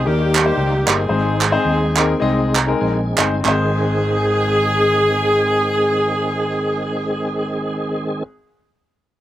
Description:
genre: uptempo gospel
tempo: 92-119 BPM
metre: 4/4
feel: swing 58% on 8ths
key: Ab major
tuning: A4 = 440 Hz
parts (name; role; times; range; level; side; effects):
- clear saxophone section; melody; 0.0-8.2 s; Bb3 to Ab4; -20 LUFS; equal; slapback echo
- warm grand piano; accompaniment; 0.0-8.3 s; Ab1 to Bb5; -22 LUFS; left 4 dB; slapback echo
- tonewheel organ; sustained chords; 0.0-8.2 s; Eb3 to Ab4; -23 LUFS; right 1 dB; slow rotary speaker, overdrive, chorus vibrato
- fingered electric bass; bass; 0.0-8.2 s; G1 to Eb2; -23 LUFS; equal; none
- group handclap; percussion; 0.4-3.8 s; none; -19 LUFS; right 7 dB; none
room: little or no reverb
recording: recorded outdoors, with no room sound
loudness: -15 LUFS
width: side -13 dB against mid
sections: 0.0-3.4 A section; 3.4-8.7 B section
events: slowing down 0.0-3.4; grand piano fill 2.2-3.4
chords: 0.1 Eb; 1.1 Ab

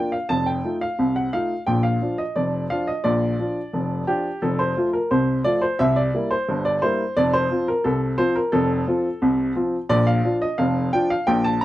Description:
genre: ragtime piano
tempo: 87 BPM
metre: 2/4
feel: straight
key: Bb major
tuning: A4 = 440 Hz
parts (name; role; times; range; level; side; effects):
- warm upright piano; solo; 0.0-11.6 s; F1 to Bb5; -19 LUFS; equal; none
room: light reverb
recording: none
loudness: -19 LUFS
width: side -15 dB against mid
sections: 0.0-11.6 A section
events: none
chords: 0.3 F7; 1.7 Bb; 4.4 F; 5.8 C7; 7.2 F; 9.9 Bb

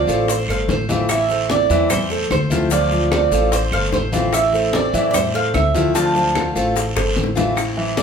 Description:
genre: latin, Cuban son and guajira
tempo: 148 BPM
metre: 4/4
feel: straight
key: unclear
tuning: A4 = 440 Hz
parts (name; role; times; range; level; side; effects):
- Cuban tres; melody; 0.0-8.0 s; C5 to A5; -20 LUFS; right 5 dB; none
- picked acoustic archtop guitar; accompaniment; 0.0-8.0 s; D3 to F4; -24 LUFS; left 3 dB; none
- warm grand piano; arpeggios; 0.1-8.0 s; E3 to F5; -22 LUFS; left 1 dB; none
- upright bass; bass; 0.1-8.0 s; G1 to A2; -23 LUFS; equal; none
- bongos; percussion; 0.1-8.0 s; none; -28 LUFS; left 6 dB; none
- congas; percussion; 0.1-8.0 s; none; -26 LUFS; left 2 dB; none
- guiro; percussion; 0.1-8.0 s; none; -31 LUFS; right 2 dB; none
- maracas; percussion; 0.1-8.0 s; none; -31 LUFS; left 6 dB; none
- claves; percussion; 0.5-7.8 s; none; -32 LUFS; right 4 dB; none
room: moderate large studio reverb, RT60 1.1 s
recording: band playing live in one room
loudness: -15 LUFS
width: side -6 dB against mid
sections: 0.0-7.6 A section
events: drum fill 7.0-7.6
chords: 0.0 Dm7; 1.1 Am; 2.7 Dm7; 4.3 Am; 5.9 Dm7

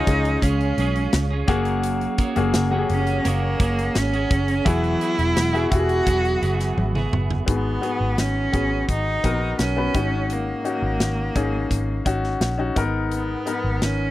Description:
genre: piano-driven pop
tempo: 85 BPM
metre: 4/4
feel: straight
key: G# minor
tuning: A4 = 444 Hz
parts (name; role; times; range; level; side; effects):
- rich cello; melody; 0.0-14.1 s; A#3 to F#4; -25 LUFS; right 1 dB; none
- clear baby grand piano; accompaniment; 0.0-14.1 s; G#2 to B4; -26 LUFS; left 4 dB; none
- mellow tonewheel organ; sustained chords; 0.0-7.5 s; G#4 to C#6; -35 LUFS; right 2 dB; chorus vibrato, stopped rotary speaker
- twelve-string electric guitar; riff; 0.0-7.5 s; E3 to G#4; -28 LUFS; right 4 dB; spring reverb
- vintage muted picked electric bass; bass; 0.1-14.1 s; E1 to C#2; -24 LUFS; equal; none
- modern studio drum kit; drums; 0.1-14.0 s; hi-hat, kick drum, snare drum, toms; -24 LUFS; equal; none
room: little or no reverb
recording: dry, close 1970s-style studio recording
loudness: -19 LUFS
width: side -15 dB against mid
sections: 0.0-7.5 A section; 7.5-14.1 B section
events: drum fill 6.8-7.5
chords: 0.0 C#; 1.5 F#add9; 4.7 Eadd9; 7.5 G#m7; 9.9 D#m7/G#; 12.8 Bmaj7/G#

